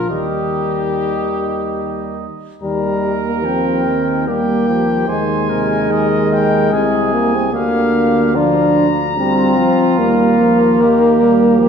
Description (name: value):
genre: classical, brass quintet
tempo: 73 BPM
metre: 3/4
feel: straight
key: Eb major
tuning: A4 = 440 Hz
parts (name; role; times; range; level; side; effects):
- clear cornet; melody; 0.0-11.7 s; G4 to Bb5; -23 LUFS; left 5 dB; none
- warm trumpet; second line; 0.0-11.7 s; Eb4 to C5; -22 LUFS; right 6 dB; none
- warm French horn; accompaniment; 0.0-11.7 s; F3 to D4; -15 LUFS; left 1 dB; none
- warm trombone; accompaniment; 0.0-11.7 s; C3 to G3; -22 LUFS; right 4 dB; none
- dark bass trombone; bass; 0.0-11.7 s; C2 to Eb2; -23 LUFS; right 2 dB; none
room: wet scoring stage reverb, RT60 1.9 s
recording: minimal, uncompressed stereo recording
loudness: -13 LUFS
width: side -7 dB against mid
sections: 0.0-2.6 A section; 2.6-11.7 A section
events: none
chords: 0.1 Eb; 5.1 Ab/Eb; 7.5 Bb/D; 10.0 Eb